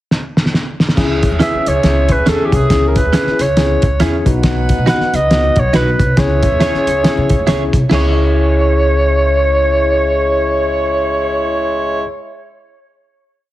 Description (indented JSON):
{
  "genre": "uptempo 1960s-style soul",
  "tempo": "138 BPM",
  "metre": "4/4",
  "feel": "swing 60% on 8ths",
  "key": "C# minor",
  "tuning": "A4 = 440 Hz",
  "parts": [
    { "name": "cloth-damped thuddy drum kit", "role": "drums", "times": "0.1-8.0 s", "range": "crash cymbal, hi-hat, kick drum, snare drum", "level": "-16 LUFS", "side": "equal", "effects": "none" },
    { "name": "warm horn section", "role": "second line", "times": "1.0-12.0 s", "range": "G#3 to F#5", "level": "-22 LUFS", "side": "equal", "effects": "none" },
    { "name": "tine electric piano", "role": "accompaniment", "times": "1.0-12.1 s", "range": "B3 to B4", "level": "-21 LUFS", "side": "left 4 dB", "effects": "overdrive, medium stereo tremolo" },
    { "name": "upright bass", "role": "bass", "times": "1.0-12.0 s", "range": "B1 to C#3", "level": "-17 LUFS", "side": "equal", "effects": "none" },
    { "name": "growling alto saxophone", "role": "melody", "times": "1.4-12.1 s", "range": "G4 to F#5", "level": "-16 LUFS", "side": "equal", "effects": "tape echo" },
    { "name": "direct-recorded clean electric guitar", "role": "stabs", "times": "1.4-12.1 s", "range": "C#4 to C#5", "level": "-22 LUFS", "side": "right 4 dB", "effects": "none" }
  ],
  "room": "light reverb, small room ambience",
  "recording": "heavily compressed radio sound",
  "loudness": "-11 LUFS",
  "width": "side -15 dB against mid",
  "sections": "0.0-1.0 pickup bar; 1.0-7.9 A section; 7.9-11.4 final chord",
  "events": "drum fill 0.1-1.0",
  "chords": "0.0 N.C.; 1.0 C#m; 4.2 B; 6.2 C#m"
}